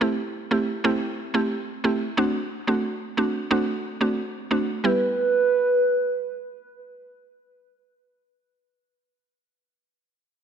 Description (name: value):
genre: dancehall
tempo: 90 BPM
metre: 4/4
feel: straight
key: E minor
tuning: A4 = 440 Hz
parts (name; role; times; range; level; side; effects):
- mallet-like synth pluck; accompaniment; 0.0-8.4 s; G3 to G4; -23 LUFS; right 2 dB; chorus
- hollow clarinet-like synth lead; melody; 4.8-6.8 s; B4; -21 LUFS; right 2 dB; chorus
room: moderate lush hall reverb, RT60 2.5 s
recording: none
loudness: -22 LUFS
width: side -8 dB against mid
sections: 0.0-4.8 A section; 4.8-7.5 B section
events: none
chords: 0.0 Am7; 2.2 D7; 4.8 Em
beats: 0.18 0.84 1.51 | 2.18 2.84 3.51 4.18 | 4.84 5.51 6.18 6.84